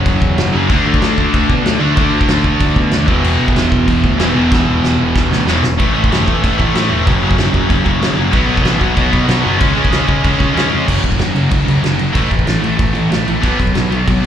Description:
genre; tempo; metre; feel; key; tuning
punk rock; 188 BPM; 4/4; straight; F# minor from 10.9 s; A4 = 440 Hz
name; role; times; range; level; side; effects
cranked stack guitar; riff; 0.0-14.3 s; E2 to D4; -19 LUFS; right 9 dB; overdrive, slapback echo
sludgy distorted guitar; riff; 0.0-14.3 s; E2 to D4; -18 LUFS; left 9 dB; overdrive
tight distorted guitar; riff; 0.0-5.6, 8.3-14.3 s; E2 to D4; -21 LUFS; right 2 dB; distortion, slapback echo
fuzz picked electric bass; bass; 0.0-14.3 s; E1 to B2; -18 LUFS; equal; overdrive
loose indie drum kit; drums; 0.1-14.1 s; crash cymbal, kick drum, snare drum; -16 LUFS; equal; none
room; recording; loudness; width
little or no reverb; live gig heard through the venue's PA, club reverb; -11 LUFS; side -9 dB against mid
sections
0.0-5.8 A section; 5.8-10.9 B section; 10.9-14.3 C section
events
drum fill 4.5-5.8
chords
0.0 F#5; 0.7 D5; 3.1 E5; 5.8 A5; 7.1 F#5; 8.3 B5; 9.6 C#5; 10.9 F#5; 12.2 A5; 13.4 B5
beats
0.05 0.37 | 0.69 1.01 1.33 1.65 | 1.97 2.28 2.60 2.92 | 3.24 3.56 3.88 4.20 | 4.51 4.83 5.15 5.47 | 5.79 6.11 6.42 6.74 | 7.06 7.38 7.70 8.01 | 8.33 8.65 8.97 9.29 | 9.60 9.92 10.24 10.56 | 10.88 11.20 11.51 11.83 | 12.15 12.47 12.79 13.11 | 13.43 13.75 14.07

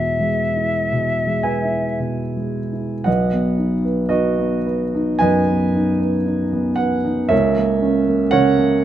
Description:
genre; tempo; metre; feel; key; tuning
classical, romantic duo for flute and grand piano; 57 BPM; 4/4; rubato; E major, B major from 3.1 s; A4 = 436 Hz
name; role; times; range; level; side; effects
silver concert flute; melody; 0.0-2.0 s; E5; -21 LUFS; left 3 dB; none
dark grand piano; accompaniment; 0.0-8.8 s; B1 to G#5; -17 LUFS; right 2 dB; none
room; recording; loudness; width
moderate large studio reverb, RT60 1.2 s; none; -16 LUFS; side -11 dB against mid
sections
0.0-3.1 A section; 3.1-8.8 B section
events
none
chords
0.0 E; 3.1 B; 7.3 F#7/C#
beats
0.92 1.99 | 3.07 4.12 5.22 6.28 | 7.32 8.34

